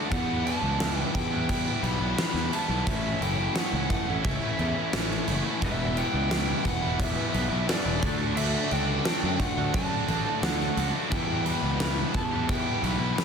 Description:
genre	quiet-loud alternative rock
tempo	87 BPM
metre	4/4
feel	straight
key	E dorian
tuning	A4 = 438 Hz
part	overdriven electric guitar	riff	0.0-13.2 s	A2 to F#4	-34 LUFS	right 13 dB	none
part	thick fuzz guitar	riff	0.0-13.2 s	A2 to E4	-32 LUFS	left 11 dB	distortion
part	lead guitar through a small cranked amp	melody	0.1-13.2 s	D5 to B5	-33 LUFS	right 1 dB	overdrive, slapback echo
part	fuzz picked electric bass	bass	0.1-13.1 s	E1 to F#2	-30 LUFS	equal	overdrive
part	huge arena drum kit	drums	0.1-13.2 s	crash cymbal, kick drum, snare drum	-29 LUFS	equal	soft clipping on kick
part	distorted electric guitar	riff	5.6-13.2 s	E2 to D4	-35 LUFS	right 1 dB	overdrive
room	light reverb, studio ambience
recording	dense, heavily limited modern master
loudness	-24 LUFS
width	side -6 dB against mid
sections	0.0-13.2 A section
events	none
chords	0.1 Em; 2.9 A6; 5.6 Em; 8.0 D; 11.1 Em

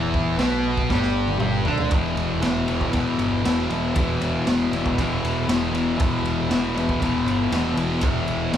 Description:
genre	garage rock duo or trio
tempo	118 BPM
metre	4/4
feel	straight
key	E minor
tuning	A4 = 440 Hz
part	thick fuzz guitar	riff	0.0-8.6 s	E2 to D4	-22 LUFS	left 1 dB	distortion
part	fuzz picked electric bass	bass	0.0-8.6 s	E1 to D2	-29 LUFS	equal	overdrive
part	raw garage drum kit	drums	0.1-8.6 s	crash cymbal, kick drum, ride cymbal, snare drum, toms	-24 LUFS	equal	none
room	light reverb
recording	band playing live in one room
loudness	-20 LUFS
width	side -10 dB against mid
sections	0.0-1.9 A section; 1.9-8.6 B section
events	drum fill 0.9-1.9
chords	0.0 Em; 1.9 E5

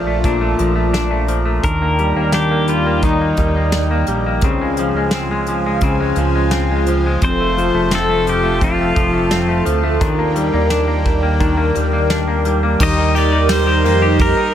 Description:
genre	dream pop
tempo	86 BPM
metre	4/4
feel	straight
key	Eb lydian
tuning	A4 = 438 Hz
part	phased analog pad	sustained chords	0.0-14.5 s	Eb3 to Bb5	-21 LUFS	right 2 dB	phaser, chorus
part	semi-hollow electric guitar	arpeggios	0.0-14.5 s	F2 to G4	-19 LUFS	left 3 dB	wide subtle chorus, ping-pong delay
part	chorused synth bass	bass	0.0-14.3 s	F1 to F2	-19 LUFS	equal	none
part	soft brush drum kit	drums	0.2-14.4 s	crash cymbal, hi-hat, kick drum, ride cymbal, snare drum, tambourine	-21 LUFS	equal	none
part	pedal steel guitar	melody	1.6-14.5 s	Eb4 to Eb5	-22 LUFS	left 1 dB	ping-pong delay
part	glockenspiel with rubber mallets	texture	13.5-14.5 s	G6 to C7	-28 LUFS	right 2 dB	ping-pong delay
room	light reverb, studio ambience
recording	none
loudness	-13 LUFS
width	side -10 dB against mid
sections	0.0-12.8 A section; 12.8-14.5 B section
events	none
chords	0.0 Bbmaj7; 1.6 Ebmaj7; 4.4 Dbmaj7; 7.2 F; 10.0 Ebmaj7; 12.8 Eb

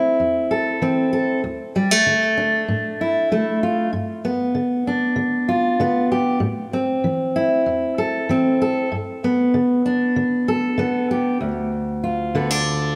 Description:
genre	folk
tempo	96 BPM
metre	4/4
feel	straight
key	D dorian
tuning	A4 = 440 Hz
part	fingerpicked steel-string acoustic guitar	solo	0.0-13.0 s	D2 to A4	-20 LUFS	equal	tape echo
room	wet large studio reverb, RT60 1.3 s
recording	none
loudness	-20 LUFS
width	mono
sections	0.0-11.4 A section; 11.4-13.0 B section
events	none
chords	0.0 Am; 1.4 D5; 3.9 G; 6.4 Am; 8.9 Gadd9; 11.4 Dm

